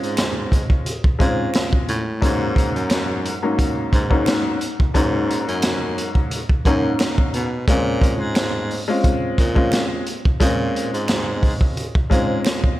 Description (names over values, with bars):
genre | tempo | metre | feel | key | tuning
hip hop, boom-bap hip-hop | 88 BPM | 4/4 | swing 54% on 16ths | Bb minor | A4 = 440 Hz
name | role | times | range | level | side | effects
warm upright piano | accompaniment | 0.0-12.8 s | Ab2 to F4 | -22 LUFS | left 2 dB | cassette tape, high-pass filter, low-pass filter
breathy baritone saxophone | bass | 0.0-12.4 s | Gb2 to Cb3 | -24 LUFS | equal | none
crunchy breakbeat drum kit | drums | 0.0-12.8 s | hi-hat, kick drum, snare drum | -19 LUFS | equal | none
finger snap | percussion | 0.2-12.6 s | none | barely audible | none | none
room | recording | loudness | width
moderate lush hall reverb, RT60 1.8 s, small room ambience | dreamy mix soaked in reverb | -17 LUFS | side -15 dB against mid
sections
0.0-12.8 A section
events
none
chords
0.0 Bbm7 (rootless); 2.2 Ab7sus4; 7.7 Bbm7